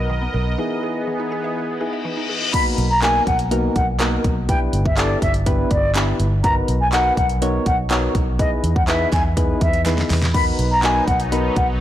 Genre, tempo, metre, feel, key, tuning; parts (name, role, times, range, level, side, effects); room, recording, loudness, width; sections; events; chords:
dance-pop; 123 BPM; 4/4; straight; B major; A4 = 439 Hz
soft electric-piano-like synth keys; accompaniment; 0.0-11.6 s; A#3 to C#5; -24 LUFS; left 1 dB; chorus, sidechain pumping
sweeping resonant pad; sustained chords; 0.0-2.5, 10.3-11.8 s; E3 to D#5; -27 LUFS; equal; chorus, sidechain pumping
mallet-like synth pluck; arpeggios; 0.0-2.4 s; D#3 to E5; -32 LUFS; right 2 dB; chorus, sidechain pumping, tape echo
vintage muted fingered electric bass; bass; 0.0-11.8 s; G1 to E2; -21 LUFS; equal; sidechain pumping
reverse cymbal; sound effects; 1.9-2.5 s; -26 LUFS; left 5 dB
mellow concert flute; melody; 2.5-11.7 s; D5 to B5; -21 LUFS; left 1 dB; sidechain pumping, tape echo
pop drum kit; drums; 2.5-11.7 s; crash cymbal, handclaps, hi-hat, kick drum, snare drum; -21 LUFS; equal
group handclap; percussion; 3.0-10.9 s; -33 LUFS; right 3 dB
light reverb; blown-out, overdriven recording, overdrive; -16 LUFS; side -12 dB against mid
0.0-2.5 A section; 2.5-11.8 B section
break 0.6-2.5; reverse cymbal 1.9-2.5; drop 2.5-11.8; drum fill 9.9-10.3
0.0 Bmaj7; 0.6 Emaj7; 2.5 Bmaj7; 4.5 G6; 6.4 Bmaj7; 8.4 Emaj7; 10.3 Bmaj7